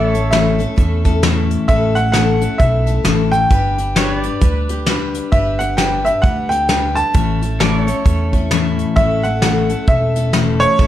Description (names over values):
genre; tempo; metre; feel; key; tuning
honky-tonk and classic country; 132 BPM; 4/4; swing 60% on 8ths; A mixolydian; A4 = 439 Hz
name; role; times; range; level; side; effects
bright upright piano; melody; 0.0-10.9 s; C#5 to A5; -18 LUFS; right 1 dB; none
picked steel-string acoustic guitar; accompaniment; 0.0-10.9 s; A2 to C#5; -19 LUFS; left 5 dB; none
pedal steel guitar; sustained chords; 0.0-9.0 s; A4 to D5; -26 LUFS; right 2 dB; none
upright bass; bass; 0.0-10.9 s; E1 to E2; -19 LUFS; right 1 dB; none
soft brush drum kit; drums; 0.1-10.9 s; hi-hat, kick drum, snare drum; -18 LUFS; equal; none
room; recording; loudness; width
light reverb; none; -13 LUFS; side -12 dB against mid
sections
0.0-9.0 A section; 9.0-10.9 A section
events
none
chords
0.0 A; 3.5 G; 7.1 A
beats
0.32 0.78 1.23 | 1.69 2.14 2.60 3.05 | 3.51 3.96 4.42 4.87 | 5.33 5.78 6.24 6.69 | 7.15 7.60 8.06 8.51 | 8.97 9.42 9.88 10.33 | 10.79